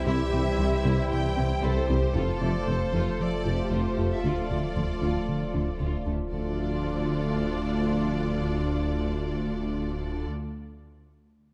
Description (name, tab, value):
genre	cinematic, hybrid orchestral and electronic film score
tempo	115 BPM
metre	4/4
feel	straight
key	D minor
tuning	A4 = 440 Hz
part	rich symphonic violin section	melody	0.0-10.3 s	A4 to G5	-40 LUFS	equal	none
part	rich studio violin section	second line	0.0-10.3 s	G3 to A4	-43 LUFS	equal	none
part	rich symphonic viola section	accompaniment	0.0-10.3 s	D4 to D5	-39 LUFS	equal	none
part	mellow French horn section	sustained chords	0.0-10.3 s	G3 to F4	-38 LUFS	equal	none
part	warm analog pad	sustained chords	0.0-10.3 s	E3 to D5	-36 LUFS	equal	chorus
part	punchy sub bass	bass	0.0-10.3 s	D1 to C2	-37 LUFS	equal	none
part	tight sequenced synth	arpeggios	0.1-6.2 s	C3 to F4	-39 LUFS	equal	none
part	smooth gliding synth bass	riff	0.1-6.2 s	C2 to F3	-34 LUFS	equal	none
part	rich symphonic cello section	bass	0.1-10.3 s	C2 to F2	-38 LUFS	equal	none
part	warm symphonic double bass section	bass	0.1-10.3 s	F1 to D2	-36 LUFS	equal	none
part	warm tuba	bass	0.1-10.3 s	F1 to D2	-36 LUFS	equal	none
room	moderate scoring stage reverb, RT60 2.0 s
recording	none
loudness	-27 LUFS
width	mono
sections	0.0-6.3 A section; 6.3-10.5 B section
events	none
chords	0.0 C; 2.2 F; 4.2 Dm